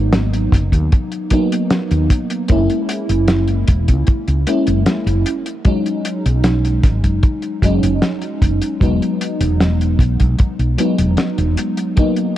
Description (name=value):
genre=vaporwave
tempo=76 BPM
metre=4/4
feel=straight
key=E lydian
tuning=A4 = 437 Hz
part: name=FM electric piano with soft pad layer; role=accompaniment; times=0.0-12.4 s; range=F#3 to E4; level=-19 LUFS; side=equal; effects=analog chorus, analog delay
part: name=woody fretless electric bass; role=bass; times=0.0-11.5 s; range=E1 to D#2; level=-16 LUFS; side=equal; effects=none
part: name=warm soul drum kit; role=drums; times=0.1-12.3 s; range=hi-hat, snare drum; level=-20 LUFS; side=equal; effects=none
part: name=kick drum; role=drums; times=0.5-12.1 s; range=none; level=-14 LUFS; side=equal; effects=none
room=small room ambience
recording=dark, warm production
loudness=-14 LUFS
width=side -13 dB against mid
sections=0.0-12.4 A section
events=none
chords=0.0 G#m9; 2.5 F#7; 5.3 B69; 8.8 Emaj9